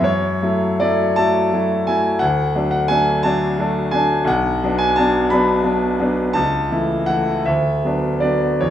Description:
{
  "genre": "classical, romantic character piece for solo piano",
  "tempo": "50-59 BPM (dotted quarters)",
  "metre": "6/8",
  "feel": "rubato",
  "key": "unclear",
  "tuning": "A4 = 444 Hz",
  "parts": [
    { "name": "bright concert grand piano", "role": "solo", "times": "0.0-8.7 s", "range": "B1 to B5", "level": "-16 LUFS", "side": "equal", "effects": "none" }
  ],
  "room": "wet recital hall reverb, RT60 1.4 s",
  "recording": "minimal, uncompressed stereo recording",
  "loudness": "-16 LUFS",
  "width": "side -10 dB against mid",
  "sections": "0.0-8.7 A section",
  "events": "none",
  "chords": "0.1 F#m7; 2.2 D; 4.3 Bm; 6.4 A/C#; 7.5 Bm/D"
}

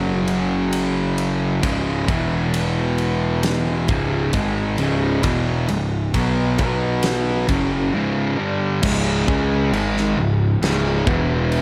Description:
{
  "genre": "stoner and doom metal",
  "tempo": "67 BPM",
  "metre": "4/4",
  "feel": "straight",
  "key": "C# minor",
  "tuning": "A4 = 438 Hz",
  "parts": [
    { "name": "fuzz guitar", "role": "riff", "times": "0.0-11.6 s", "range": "C#2 to C#4", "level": "-22 LUFS", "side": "equal", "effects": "distortion" },
    { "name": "fuzz picked electric bass", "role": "bass", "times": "0.0-11.6 s", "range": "C#1 to C#2", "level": "-26 LUFS", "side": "equal", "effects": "overdrive" },
    { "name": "big rock drum kit", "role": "drums", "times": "0.3-11.6 s", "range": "crash cymbal, kick drum, ride cymbal, snare drum", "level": "-28 LUFS", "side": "equal", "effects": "none" }
  ],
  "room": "little or no reverb",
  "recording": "none",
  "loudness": "-20 LUFS",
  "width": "mono",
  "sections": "0.0-8.8 A section; 8.8-11.6 B section",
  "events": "none",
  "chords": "0.0 F#5; 1.6 C#5; 2.1 E5; 3.9 C#m; 6.6 B5; 7.5 C#5; 11.1 E5"
}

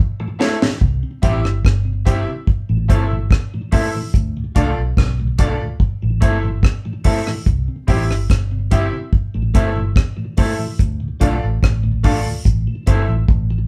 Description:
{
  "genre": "roots reggae",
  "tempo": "72 BPM",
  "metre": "4/4",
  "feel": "straight",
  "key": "A minor",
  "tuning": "A4 = 440 Hz",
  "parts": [
    { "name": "electric guitar through a small old amp", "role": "accompaniment", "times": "0.2-13.0 s", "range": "G3 to A4", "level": "-28 LUFS", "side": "equal", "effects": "slapback echo" },
    { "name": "mellow tonewheel organ", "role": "accompaniment", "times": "0.2-13.6 s", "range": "D2 to F4", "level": "-29 LUFS", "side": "equal", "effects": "overdrive, chorus vibrato, stopped rotary speaker, slapback echo" },
    { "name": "bright upright piano", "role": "stabs", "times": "0.4-13.1 s", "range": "E4 to F5", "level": "-27 LUFS", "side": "equal", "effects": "none" },
    { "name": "deep reggae drum kit", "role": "drums", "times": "0.4-13.5 s", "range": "hi-hat, kick drum, rim click, snare drum", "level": "-19 LUFS", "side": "equal", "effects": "none" },
    { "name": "vintage muted fingered electric bass", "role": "bass", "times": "0.8-13.7 s", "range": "G1 to D2", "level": "-22 LUFS", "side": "equal", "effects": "none" }
  ],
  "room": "moderate studio reverb, RT60 0.5 s",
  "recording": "band playing live in one room",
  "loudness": "-18 LUFS",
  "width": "mono",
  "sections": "0.8-13.7 A section",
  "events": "drum fill 0.0-0.8, 13.3-13.7",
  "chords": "0.0 Am; 0.8 C; 4.1 Dm; 5.8 Am; 10.8 Dm; 12.5 Am"
}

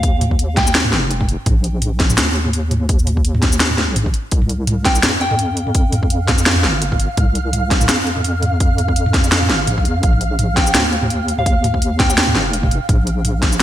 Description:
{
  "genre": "half-time drum and bass",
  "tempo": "168 BPM",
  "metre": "4/4",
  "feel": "swing 56% on 16ths, half-time",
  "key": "unclear",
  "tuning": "A4 = 440 Hz",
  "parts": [
    { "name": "soft synth bell", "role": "melody", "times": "0.0-0.7, 4.9-5.6, 10.6-12.1 s", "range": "F5 to G5", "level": "-23 LUFS", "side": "equal", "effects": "chorus, digital delay" },
    { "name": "deep soft wobble bass", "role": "bass", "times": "0.0-13.6 s", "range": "F1 to F2", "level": "-19 LUFS", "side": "equal", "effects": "chorus, tube saturation" },
    { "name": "drum and bass drum kit", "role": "drums", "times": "0.0-13.6 s", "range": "hi-hat, shaker, snare drum, toms", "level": "-17 LUFS", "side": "equal", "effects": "overdrive, gated reverb" },
    { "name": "electronic kick drum", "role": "drums", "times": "0.0-13.5 s", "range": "none", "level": "-17 LUFS", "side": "equal", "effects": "none" },
    { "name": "flickering grainy texture", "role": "texture", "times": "5.1-13.6 s", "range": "F5", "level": "-25 LUFS", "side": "right 2 dB", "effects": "built-in reverb, analog chorus" }
  ],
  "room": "light reverb",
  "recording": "bright 1980s-style digital production",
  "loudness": "-14 LUFS",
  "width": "side -12 dB against mid",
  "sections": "0.0-13.6 A section",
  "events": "none",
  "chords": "0.0 Bb5; 4.3 C5; 10.0 Bb5"
}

